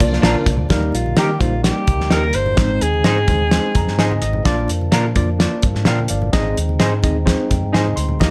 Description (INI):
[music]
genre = uptempo 1960s-style soul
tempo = 128 BPM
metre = 4/4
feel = straight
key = unclear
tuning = A4 = 439 Hz
[part]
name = warm studio string section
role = second line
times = 0.0-0.7 s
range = Bb3 to D5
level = -25 LUFS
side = equal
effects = none
[part]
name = tonewheel organ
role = sustained chords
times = 0.0-8.3 s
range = F3 to Eb4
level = -30 LUFS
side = equal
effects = stopped rotary speaker
[part]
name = vintage muted fingered electric bass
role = bass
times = 0.0-8.3 s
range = G1 to Eb3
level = -23 LUFS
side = equal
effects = none
[part]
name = cloth-damped thuddy drum kit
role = drums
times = 0.0-8.3 s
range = hi-hat, kick drum, snare drum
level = -20 LUFS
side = equal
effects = none
[part]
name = tine electric piano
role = accompaniment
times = 0.2-8.3 s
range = G3 to C6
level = -26 LUFS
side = equal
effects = none
[part]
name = electric guitar through a small old amp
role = stabs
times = 0.2-7.9 s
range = D4 to C5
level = -24 LUFS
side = equal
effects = analog chorus
[part]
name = congas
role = percussion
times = 0.3-8.3 s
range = none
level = -33 LUFS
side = equal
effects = none
[part]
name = warm alto saxophone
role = melody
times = 0.9-4.2 s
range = F4 to C5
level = -23 LUFS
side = equal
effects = none
[sound]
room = light reverb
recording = none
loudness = -17 LUFS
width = mono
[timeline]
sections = 0.7-8.3 A section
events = tine electric piano fill 3.5-4.5, 7.3-8.2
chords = 0.0 Bb; 0.7 Eb; 2.6 Ab; 4.5 Bb; 6.3 Ab